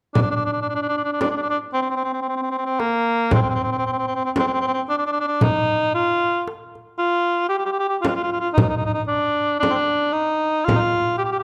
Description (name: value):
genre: Turkish makam ensemble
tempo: 114 BPM (eighths)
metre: 10/8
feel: straight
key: unclear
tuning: A4 = 440 Hz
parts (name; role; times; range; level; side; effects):
- warm cor anglais; melody; 0.1-11.4 s; Bb3 to G4; -22 LUFS; equal; none
- darbuka; percussion; 0.2-10.9 s; none; -27 LUFS; equal; none
- frame drum; percussion; 0.2-10.9 s; none; -27 LUFS; equal; none
room: moderate recital hall reverb, RT60 1.4 s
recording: dark, warm production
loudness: -21 LUFS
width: mono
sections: 0.1-11.4 A section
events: none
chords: none